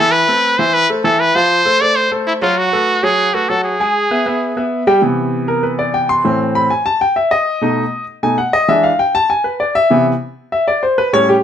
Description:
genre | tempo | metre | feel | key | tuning
latin | 196 BPM | 4/4 | straight | unclear | A4 = 440 Hz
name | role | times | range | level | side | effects
bright trumpet | melody | 0.0-4.7 s | E4 to D5 | -13 LUFS | equal | none
clear concert grand piano | accompaniment | 0.0-11.4 s | A2 to C6 | -14 LUFS | left 1 dB | none
room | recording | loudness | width
moderate studio reverb, RT60 0.8 s | none | -12 LUFS | side -9 dB against mid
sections
0.0-5.0 A section; 5.0-11.4 B section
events
grand piano solo 5.0-11.4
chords
0.1 Am; 1.3 F; 2.6 B5; 3.8 E; 5.0 Cmaj7; 6.2 Am; 7.5 B7; 8.7 E7; 9.9 Cmaj7

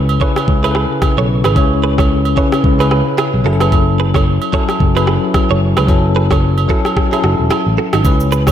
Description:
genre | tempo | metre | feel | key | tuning
afrobeats | 111 BPM | 4/4 | swing 58% on 16ths | unclear | A4 = 440 Hz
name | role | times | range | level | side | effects
bell-like tine electric piano | accompaniment | 0.0-8.5 s | C#3 to C#5 | -17 LUFS | left 4 dB | fast stereo tremolo
fingered electric bass | bass | 0.0-8.5 s | E1 to C#2 | -15 LUFS | equal | none
agogo bells | percussion | 0.1-8.5 s | none | -22 LUFS | right 8 dB | none
direct-recorded clean electric guitar | riff | 0.2-8.5 s | D#4 to C#5 | -21 LUFS | right 7 dB | wide subtle chorus, analog delay
afro-pop drum kit | drums | 0.2-8.5 s | kick drum, rim click, shaker | -17 LUFS | equal | none
room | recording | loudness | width
moderate lush hall reverb, RT60 1.6 s | dreamy mix soaked in reverb | -11 LUFS | side -10 dB against mid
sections
0.0-8.5 A section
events
break 0.0-8.0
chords
0.0 C#m7; 3.5 F#m7

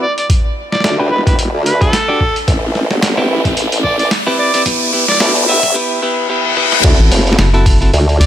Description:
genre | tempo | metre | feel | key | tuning
glitch hop | 110 BPM | 4/4 | swing 57% on 16ths | A dorian | A4 = 440 Hz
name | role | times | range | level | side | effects
overdriven harmonica | melody | 0.0-8.3 s | A4 to E5 | -18 LUFS | equal | low-pass filter, digital delay
clean electric guitar | stabs | 0.0-7.9 s | B3 to D5 | -19 LUFS | equal | sidechain pumping, low-pass filter, digital delay
riser and reverse cymbal | sound effects | 1.5-6.8 s | none | -17 LUFS | left 2 dB | none
boom bap sampler-style drum kit | drums | 0.2-8.3 s | crash cymbal, hi-hat, snare drum, toms | -19 LUFS | right 1 dB | none
electronic kick drum | drums | 0.3-7.8 s | none | -14 LUFS | equal | none
formant-sweep wobble bass | bass | 0.8-8.2 s | E1 to D2 | -15 LUFS | equal | chorus, high-pass filter
rubbery square bass | bass | 7.0-8.3 s | F#1 to D2 | -10 LUFS | equal | none
room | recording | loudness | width
light reverb | high-pass filter | -10 LUFS | side -11 dB against mid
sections
0.0-6.8 A section; 6.8-8.3 B section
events
build-up 0.0-6.8; filter sweep on clean electric guitar 0.0-6.8; filter sweep 0.0-6.8; riser 1.5-5.8; reverse cymbal 5.8-6.8; drum fill 6.4-6.8; drop 6.8-8.3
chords
0.3 Em7; 2.5 Am7; 4.7 G; 6.8 D7

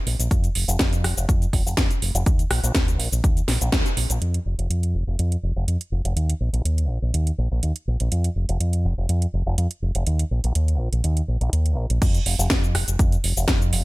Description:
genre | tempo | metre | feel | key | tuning
filtered disco house | 123 BPM | 4/4 | straight | unclear | A4 = 440 Hz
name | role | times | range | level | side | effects
fingered electric bass with an envelope filter | bass | 0.1-13.8 s | F1 to F2 | -22 LUFS | equal | sidechain pumping, low-pass filter
house drum kit | drums | 0.1-13.8 s | crash cymbal, hi-hat, rim click, shaker, snare drum | -25 LUFS | right 1 dB | none
electronic kick drum | drums | 0.3-3.8, 12.0-13.6 s | none | -21 LUFS | equal | none
room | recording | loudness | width
digital ambience | none | -20 LUFS | side -20 dB against mid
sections
0.0-4.2 A section; 4.2-12.0 B section; 12.0-13.8 C section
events
band accent 3.7; filter sweep on fingered electric bass 4.2-12.0; drop 12.0-13.8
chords
none

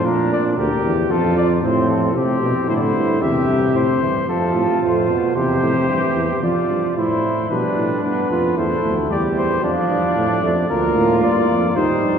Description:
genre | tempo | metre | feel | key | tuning
classical, imitative canzona for brass ensemble | 113 BPM | 4/4 | straight | unclear | A4 = 440 Hz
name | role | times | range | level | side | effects
mellow trumpet | melody | 0.0-12.2 s | G4 to E5 | -22 LUFS | left 4 dB | none
warm flugelhorn | second line | 0.0-12.2 s | C4 to G4 | -21 LUFS | right 3 dB | none
mellow bass trombone | bass | 0.0-12.2 s | D2 to C3 | -21 LUFS | equal | none
warm trombone | accompaniment | 2.7-12.2 s | A2 to B3 | -22 LUFS | right 1 dB | none
room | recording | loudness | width
wet cathedral reverb, RT60 5.1 s | heard from further back in the room | -16 LUFS | side -7 dB against mid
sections
0.0-6.4 A section; 6.4-12.2 B section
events
none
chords
0.1 Bb; 1.1 F; 2.2 C; 3.2 C/E; 4.3 F; 5.4 C/E; 6.4 Dm/F; 7.5 G; 8.6 C; 9.6 Dm/F; 10.7 Bb/D

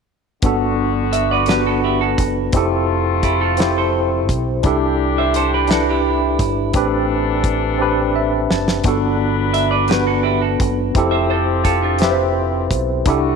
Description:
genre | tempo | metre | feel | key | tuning
slow six-eight R&B | 57 BPM (dotted quarters) | 6/8 | straight | G major | A4 = 440 Hz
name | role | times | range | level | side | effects
tine electric piano | accompaniment | 0.4-13.4 s | B3 to A5 | -18 LUFS | equal | overdrive, fast stereo tremolo
clear horn section | stabs | 0.4-13.4 s | C3 to B4 | -24 LUFS | left 13 dB | none
deep dub fingered electric bass | bass | 0.4-13.4 s | F1 to C2 | -22 LUFS | equal | none
damped 70s drum kit | drums | 0.4-13.2 s | hi-hat, kick drum, snare drum | -20 LUFS | left 1 dB | none
semi-hollow electric guitar | second line | 1.1-12.8 s | D4 to E5 | -21 LUFS | right 15 dB | none
room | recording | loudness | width
light reverb, small room reverb | 1960s-style stereo with parts hard left and right | -15 LUFS | side -5 dB against mid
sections
0.4-13.4 A section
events
drum fill 7.8-8.8; tine electric piano fill 7.8-8.8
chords
0.4 Gmaj9; 2.5 Fmaj9; 4.6 C69; 6.7 Am11; 8.8 Gmaj9; 11.0 Fmaj9

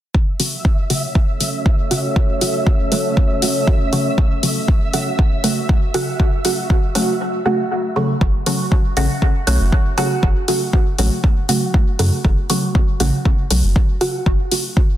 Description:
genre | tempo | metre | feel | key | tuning
dub techno | 119 BPM | 4/4 | straight | F# minor | A4 = 439 Hz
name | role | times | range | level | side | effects
deep dark ambient pad | sustained chords | 1.1-7.2 s | C#4 to C#5 | -23 LUFS | left 1 dB | chorus, built-in reverb, sidechain pumping
electronic kick drum | drums | 0.1-14.9 s | none | -15 LUFS | equal | none
flickering grainy texture | texture | 0.5-7.2 s | E5 | -28 LUFS | right 3 dB | built-in reverb, sidechain pumping
filtered dub chord stab | stabs | 0.4-14.8 s | C#3 to F#4 | -20 LUFS | right 1 dB | chorus, phaser, sidechain pumping, dub echo
electronic hi-hat | drums | 0.4-14.6 s | none | -22 LUFS | left 2 dB | none
soft dub sub bass | bass | 8.2-14.4 s | F#1 to F#2 | -17 LUFS | equal | sidechain pumping
room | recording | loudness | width
light reverb | dense, heavily limited modern master | -15 LUFS | side -12 dB against mid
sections
0.1-8.2 A section; 8.2-15.0 B section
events
filter sweep on synth stab 0.1-8.2, 8.2-15.0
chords
0.1 F#m

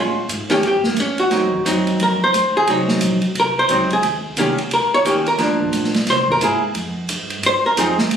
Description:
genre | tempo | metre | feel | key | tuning
jazz, small-group swing and bop | 176 BPM | 4/4 | swing 62% on 8ths | unclear | A4 = 444 Hz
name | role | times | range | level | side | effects
archtop guitar, miked and amplified | accompaniment | 0.0-8.0 s | Eb3 to Db5 | -16 LUFS | equal | none
upright bass | bass | 0.0-8.2 s | Bb1 to C3 | -27 LUFS | equal | none
open jazz drum kit | drums | 0.3-8.2 s | hi-hat, kick drum, ride cymbal, snare drum | -24 LUFS | right 2 dB | none
room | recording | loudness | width
wet studio reverb, RT60 0.8 s | recorded on a phone in the room, club reverb, compression | -15 LUFS | side -8 dB against mid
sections
0.0-8.2 A section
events
none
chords
0.0 Bbm7; 0.6 Eb; 1.3 Ab7; 4.0 Eb7; 5.4 Gm7; 6.1 Caug7; 6.8 Fm7

